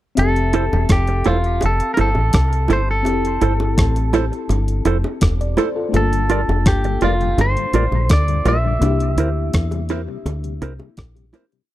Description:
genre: lovers rock reggae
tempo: 83 BPM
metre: 4/4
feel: straight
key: F major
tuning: A4 = 441 Hz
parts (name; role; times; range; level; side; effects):
- clean electric guitar; melody; 0.2-11.0 s; F4 to E5; -23 LUFS; equal; tape echo
- mellow FM electric piano; accompaniment; 0.2-11.7 s; A3 to E5; -26 LUFS; left 4 dB; chorus
- deep dub fingered electric bass; bass; 0.2-11.3 s; E1 to E2; -19 LUFS; equal; none
- crisp 8-bit digital drum machine; drums; 0.2-11.7 s; hi-hat, kick drum, rim click; -19 LUFS; equal; overdrive, tape echo
- bongos; percussion; 0.2-11.5 s; none; -27 LUFS; right 2 dB; tape echo
- mellow electric guitar; stabs; 0.5-11.4 s; E4 to D5; -22 LUFS; right 6 dB; none
- mellow tonewheel organ; accompaniment; 6.1-11.6 s; G2 to F4; -30 LUFS; left 9 dB; slow rotary speaker
room: little or no reverb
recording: dry, close 1970s-style studio recording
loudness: -15 LUFS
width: side -14 dB against mid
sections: 0.2-11.7 verse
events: fade-out 8.8-11.7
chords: 0.2 Fmaj7; 5.9 Gm7; 8.8 C7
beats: | 0.17 0.90 1.62 2.34 | 3.06 3.78 4.50 5.22 | 5.94 6.66 7.38 8.10 | 8.82 9.54 10.26 10.98

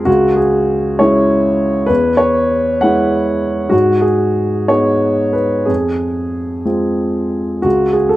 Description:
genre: neoclassical minimalist piano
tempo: 59-69 BPM (dotted quarters)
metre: 6/8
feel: rubato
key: C# minor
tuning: A4 = 440 Hz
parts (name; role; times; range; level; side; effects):
- warm grand piano; solo; 0.0-8.2 s; C#2 to F#5; -12 LUFS; equal; none
room: light reverb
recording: recorded outdoors, with no room sound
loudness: -12 LUFS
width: side -16 dB against mid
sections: 0.0-7.6 A section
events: none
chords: 0.1 C#m; 1.9 Eadd9; 3.7 G#m; 5.7 Fm; 7.6 C#5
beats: | 0.07 1.00 | 1.89 2.84 | 3.73 4.70 | 5.68 6.67 | 7.65

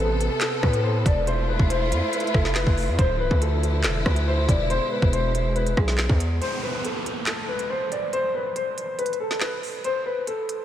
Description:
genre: hip hop, drill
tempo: 140 BPM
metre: 4/4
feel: half-time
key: unclear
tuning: A4 = 440 Hz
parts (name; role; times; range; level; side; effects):
- dark grand piano; melody; 0.0-10.6 s; G#4 to D5; -26 LUFS; left 1 dB; lush chorus, low-pass filter, tape echo
- warm symphonic string section; sustained chords; 0.0-6.4 s; B2 to A4; -29 LUFS; equal; none
- distorted 808-style bass; bass; 0.0-6.4 s; C1 to A2; -24 LUFS; equal; distortion
- drill drum kit; drums; 0.2-10.6 s; handclaps, hi-hat, kick drum, rim click, snare drum; -26 LUFS; equal; none
- downlifter; sound effects; 6.4-9.8 s; none; -34 LUFS; right 2 dB; none
room: moderate cathedral reverb, RT60 6.2 s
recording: dreamy mix soaked in reverb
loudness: -21 LUFS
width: side -11 dB against mid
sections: 0.0-6.4 A section; 6.4-10.6 B section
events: break 6.4-10.6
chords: 0.0 Amadd9; 1.3 Fmaj7; 3.0 Dmadd9; 4.7 E; 6.4 N.C.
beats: 0.41 0.84 | 1.27 1.70 2.13 2.56 | 2.99 3.42 3.84 4.27 | 4.70 5.13 5.56 5.99 | 6.42 6.84 7.27 7.70 | 8.13 8.56 8.99 9.41 | 9.84 10.27

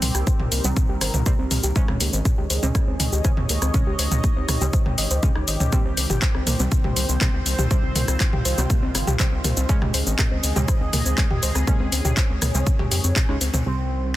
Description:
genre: melodic techno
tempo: 121 BPM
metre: 4/4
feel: straight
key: unclear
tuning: A4 = 440 Hz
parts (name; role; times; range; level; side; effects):
- sweeping resonant pad; sustained chords; 0.0-14.2 s; C4 to Eb5; -32 LUFS; equal; chorus, sidechain pumping
- soft round pluck; arpeggios; 0.0-13.6 s; Bb3 to Eb5; -31 LUFS; left 1 dB; chorus, vintage 12-bit sampler grit, sidechain pumping, digital delay
- synth brass stab; stabs; 0.0-14.2 s; C3 to Db4; -31 LUFS; right 2 dB; chorus, sidechain pumping, digital delay
- gritty driven synth bass; bass; 0.0-14.2 s; G1 to F2; -24 LUFS; equal; tube saturation, sidechain pumping
- analog drone; drone; 0.0-14.2 s; Eb3; -38 LUFS; equal; none
- house drum kit; drums; 0.0-13.6 s; handclaps, hi-hat, rim click, shaker, toms; -24 LUFS; equal; sidechain pumping on hats, sidechain pumping on perc, sidechain pumping on toms
- electronic kick drum; drums; 0.3-13.3 s; none; -20 LUFS; equal; none
- resonant sweep polysynth; melody; 13.7-14.2 s; C4; -28 LUFS; right 1 dB; chorus, sidechain pumping, digital delay
room: little or no reverb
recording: dense, heavily limited modern master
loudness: -19 LUFS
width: side -15 dB against mid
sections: 0.0-13.7 A section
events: filter sweep on synth arpeggio sound 0.0-13.7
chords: 0.0 Cm; 1.8 Dbsus2; 5.7 Cm; 9.7 Dbsus2; 13.7 Cm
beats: 0.27 0.77 1.26 | 1.76 2.25 2.75 3.25 | 3.74 4.24 4.73 5.23 | 5.72 6.22 6.72 7.21 | 7.71 8.20 8.70 9.20 | 9.69 10.19 10.68 11.18 | 11.68 12.17 12.67 13.16 | 13.66 14.15

